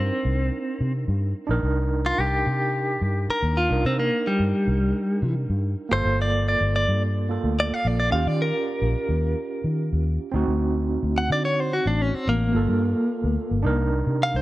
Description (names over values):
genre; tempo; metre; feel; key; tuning
straight-eighth soul blues; 109 BPM; 4/4; straight; unclear; A4 = 443 Hz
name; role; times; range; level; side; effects
direct-recorded clean electric guitar; melody; 0.0-14.4 s; G3 to F#5; -24 LUFS; left 1 dB; tremolo
overdriven tine electric piano; accompaniment; 0.0-14.4 s; Bb3 to Bb4; -29 LUFS; right 4 dB; medium tremolo
vintage muted fingered electric bass; bass; 0.0-14.4 s; G1 to Eb3; -24 LUFS; equal; none
room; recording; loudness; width
light reverb; none; -21 LUFS; side -16 dB against mid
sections
0.0-14.4 A section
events
clean electric guitar solo 0.0-14.4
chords
0.0 Cm7; 5.9 Gm7; 8.1 Eb7; 10.3 D7b9; 12.5 Gm7; 13.7 Cm7